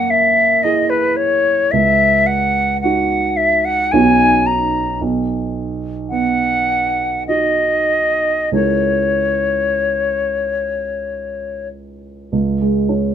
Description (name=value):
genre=classical, impressionist duo for flute and grand piano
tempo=44-57 BPM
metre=3/4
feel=rubato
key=C# dorian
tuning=A4 = 440 Hz
part: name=silver concert flute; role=melody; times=0.0-11.7 s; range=B4 to A#5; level=-15 LUFS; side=left 2 dB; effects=none
part: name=dark grand piano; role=accompaniment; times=0.0-13.1 s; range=B1 to A#4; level=-19 LUFS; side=right 4 dB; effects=none
room=light reverb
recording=dark, warm production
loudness=-14 LUFS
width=side -9 dB against mid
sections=0.0-12.3 A section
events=none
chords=0.0 F#9; 1.7 C#sus24; 3.9 Badd9; 5.0 B; 8.6 C#m6; 12.3 C#5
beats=0.64 | 1.72 2.84 3.93 | 5.01 6.11 7.28 | 8.55 9.88 11.11 | 12.33